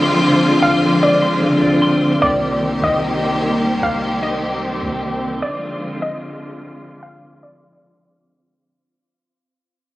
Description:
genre	hip hop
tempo	150 BPM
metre	4/4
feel	half-time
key	unclear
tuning	A4 = 436 Hz
part	warbly dusty pluck	melody	0.0-7.8 s	D5 to F5	-20 LUFS	equal	chorus, low-pass filter, digital delay
part	warm symphonic string section	sustained chords	0.0-8.6 s	D3 to G4	-18 LUFS	equal	none
part	clean electric guitar	arpeggios	0.0-2.2 s	D3 to C6	-18 LUFS	equal	tremolo, low-pass filter, digital delay
part	soft 808-style bass	bass	0.0-5.4 s	D1 to C2	-32 LUFS	equal	none
part	wind-like tuned noise texture	texture	0.0-8.6 s	Bb3 to D6	-26 LUFS	left 1 dB	built-in reverb
room	light reverb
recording	recorded on a phone in the room, studio reverb, low-pass filter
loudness	-15 LUFS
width	side -17 dB against mid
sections	0.0-2.2 A section; 2.2-8.6 B section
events	fade-out 2.2-8.6; filter sweep 2.2-8.6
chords	0.0 Dm7b5; 2.2 Cm7; 5.4 Dm7b5

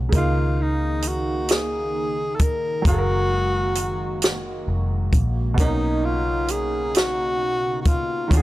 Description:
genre	slow six-eight R&B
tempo	44 BPM (dotted quarters)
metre	6/8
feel	straight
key	unclear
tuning	A4 = 440 Hz
part	clear concert grand piano	accompaniment	0.0-8.4 s	Cb3 to F5	-30 LUFS	right 2 dB	none
part	hollow soft pad	sustained chords	0.0-8.4 s	Cb3 to F5	-32 LUFS	right 2 dB	chorus
part	vintage muted fingered electric bass	bass	0.0-8.4 s	F1 to Eb2	-25 LUFS	equal	none
part	compact cocktail drum kit	drums	0.1-8.4 s	hi-hat, kick drum, snare drum	-20 LUFS	equal	none
part	breathy tenor saxophone	melody	0.2-8.4 s	Eb4 to Bb4	-24 LUFS	left 1 dB	none
room	studio reverb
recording	dry, gritty hardware recording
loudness	-20 LUFS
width	side -16 dB against mid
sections	0.0-8.4 A section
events	none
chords	0.1 Db69; 2.9 Gbmaj9; 5.6 Cbmaj9

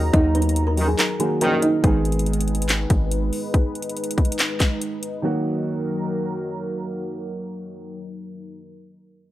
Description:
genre	hip hop, trap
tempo	141 BPM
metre	4/4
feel	half-time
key	Eb minor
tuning	A4 = 441 Hz
part	kalimba	melody	0.0-1.8 s	Cb4 to Bb5	-23 LUFS	right 2 dB	none
part	dark grand piano	accompaniment	0.0-8.0 s	Eb3 to Ab4	-28 LUFS	right 1 dB	low-pass filter
part	dark analog pad	sustained chords	0.0-8.6 s	Gb3 to Bb5	-29 LUFS	left 1 dB	chorus, low-pass filter
part	hard-hitting 808-style bass	bass	0.0-3.3 s	Ab1 to Eb2	-22 LUFS	equal	none
part	trap drum kit	drums	0.1-5.1 s	handclaps, hi-hat, kick drum	-21 LUFS	equal	none
part	bright brass ensemble	stabs	0.8-1.7 s	Bb1 to Eb3	-26 LUFS	equal	analog delay
room	small room ambience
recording	dry, gritty hardware recording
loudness	-20 LUFS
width	side -14 dB against mid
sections	0.0-1.8 A section; 1.8-8.6 B section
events	kick muted 1.0-1.8; filter sweep 1.8-8.6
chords	0.0 Ebm; 1.8 Abm; 5.2 Ebm

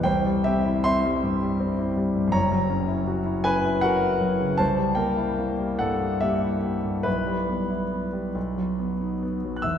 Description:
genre	classical, romantic character piece for solo piano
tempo	46-55 BPM (dotted quarters)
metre	6/8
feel	rubato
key	unclear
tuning	A4 = 440 Hz
part	warm concert grand piano	solo	0.0-9.8 s	F#1 to F#6	-22 LUFS	left 1 dB	none
room	wet church reverb, RT60 2.7 s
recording	dark, warm production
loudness	-22 LUFS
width	side -8 dB against mid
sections	0.0-9.6 A section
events	none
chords	0.1 C; 2.3 F#7; 4.6 C7; 7.1 Em/B; 8.4 B

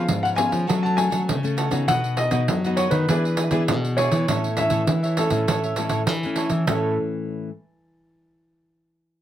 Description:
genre	samba and choro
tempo	100 BPM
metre	4/4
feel	straight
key	A major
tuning	A4 = 440 Hz
part	warm grand piano	melody	0.0-7.0 s	A4 to A5	-25 LUFS	equal	none
part	cavaquinho	accompaniment	0.0-6.9 s	E4 to F#5	-30 LUFS	right 5 dB	none
part	nylon-string guitar	accompaniment	0.0-7.5 s	F#2 to A4	-27 LUFS	left 3 dB	none
part	nylon-string guitar	bass	0.0-7.0 s	G#2 to A3	-25 LUFS	left 1 dB	none
part	pandeiro	percussion	0.1-6.8 s	none	-26 LUFS	right 3 dB	none
room	light reverb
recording	close, detailed microphones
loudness	-20 LUFS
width	side -11 dB against mid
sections	0.0-6.7 A section; 6.7-9.1 B section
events	none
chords	0.0 C#7; 0.7 F#m; 1.9 B; 3.1 E7; 4.3 A

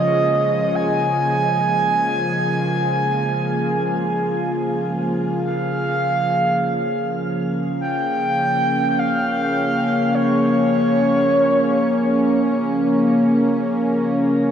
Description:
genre	ambient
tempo	free time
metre	none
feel	none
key	Bb minor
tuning	A4 = 440 Hz
part	breathy flute-like synth lead	melody	0.0-12.5 s	Db5 to Ab5	-21 LUFS	equal	wide subtle chorus, shimmer reverb, tape echo
part	warm analog pad	sustained chords	0.0-14.5 s	Db3 to Ab4	-19 LUFS	equal	chorus, shimmer reverb
part	bowed-like drone	drone	0.0-5.6 s	Bb3 to F4	-30 LUFS	left 1 dB	built-in reverb, phaser
room	wet huge ambient reverb, RT60 8.8 s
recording	dark, warm production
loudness	-17 LUFS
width	side -8 dB against mid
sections	0.0-5.4 A section; 5.4-14.5 B section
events	none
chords	0.0 Bbm7

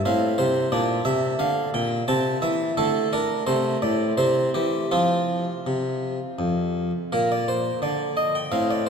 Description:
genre	classical, baroque-style suite movement for harpsichord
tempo	80-91 BPM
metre	3/4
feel	rubato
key	F major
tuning	A4 = 439 Hz
part	harpsichord	solo	0.1-8.9 s	F2 to A5	-21 LUFS	equal	none
room	wet church reverb, RT60 3.7 s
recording	none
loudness	-21 LUFS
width	side -6 dB against mid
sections	0.0-7.1 A section; 7.1-8.9 A section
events	none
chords	0.0 F/A; 0.7 Bb69; 2.1 C; 2.8 D5; 3.5 Amadd11; 4.2 C; 4.9 F5; 7.1 Bb

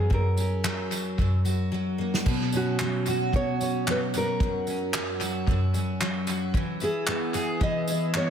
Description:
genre	acoustic pop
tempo	112 BPM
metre	4/4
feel	swing 55% on 16ths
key	unclear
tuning	A4 = 442 Hz
part	nylon-string guitar	melody	0.0-8.3 s	F#4 to D#5	-30 LUFS	equal	tape echo
part	picked steel-string acoustic guitar	accompaniment	0.0-8.3 s	F#2 to G#4	-26 LUFS	equal	double-tracked left and right, tape echo
part	unplugged drum kit	drums	0.1-8.3 s	crash cymbal, handclaps, kick drum, snare drum, tambourine	-29 LUFS	equal	tape echo
room	light reverb, studio reverb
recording	echo-heavy mix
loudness	-24 LUFS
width	side -8 dB against mid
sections	0.0-2.3 A section; 2.3-8.3 B section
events	drum fill 1.7-2.3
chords	0.0 F#; 2.3 Bsus2; 4.4 F#; 6.5 E

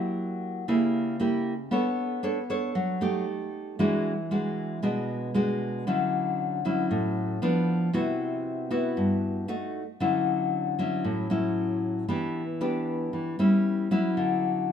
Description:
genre	bossa nova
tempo	116 BPM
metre	4/4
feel	straight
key	D major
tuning	A4 = 438 Hz
part	nylon-string guitar	solo	0.0-14.7 s	G2 to C#5	-25 LUFS	left 1 dB	none
room	moderate echo chamber reverb, RT60 1.9 s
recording	minimal, uncompressed stereo recording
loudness	-25 LUFS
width	side -8 dB against mid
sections	0.0-10.0 A section; 10.0-14.7 B section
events	none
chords	0.0 F#7b9; 1.7 Bm9; 3.3 Eb; 3.8 E9; 5.9 Dmaj9; 7.4 Bdim/F; 7.9 Cmaj7#11; 9.5 D#dim/A; 10.0 Dmaj9; 12.1 Em7; 13.7 Em69; 14.2 Dmaj9

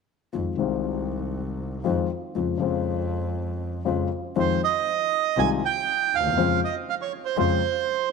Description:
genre	tango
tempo	120 BPM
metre	4/4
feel	rubato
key	F minor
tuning	A4 = 441 Hz
part	warm concert grand piano	accompaniment	0.3-7.6 s	C2 to F4	-26 LUFS	left 9 dB	none
part	clear double bass	bass	0.3-7.6 s	C2 to F2	-31 LUFS	right 2 dB	none
part	bandoneon	melody	4.4-8.1 s	C5 to Ab5	-23 LUFS	right 13 dB	none
room	moderate plate reverb, RT60 3.4 s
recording	1960s-style stereo with parts hard left and right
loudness	-23 LUFS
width	side -4 dB against mid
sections	0.3-4.4 A section; 4.4-8.1 B section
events	none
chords	0.3 Fm7; 2.4 Dbmaj7/F; 4.4 Fm7; 6.4 Dbmaj7/F

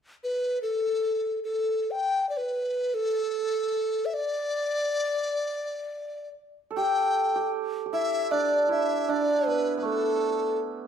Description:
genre	chinese traditional, Chinese chamber ensemble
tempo	free time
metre	none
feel	none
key	D zhi mode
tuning	A4 = 440 Hz
part	mellow hollow dizi	melody	0.2-10.6 s	A4 to G5	-26 LUFS	left 2 dB	none
part	hammered dulcimer	second line	6.7-10.9 s	A3 to A4	-27 LUFS	right 5 dB	none
room	moderate recital hall reverb, RT60 1.4 s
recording	minimal, uncompressed stereo recording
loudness	-25 LUFS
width	side -8 dB against mid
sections	0.0-6.8 A section; 6.8-10.9 B section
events	none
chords	none

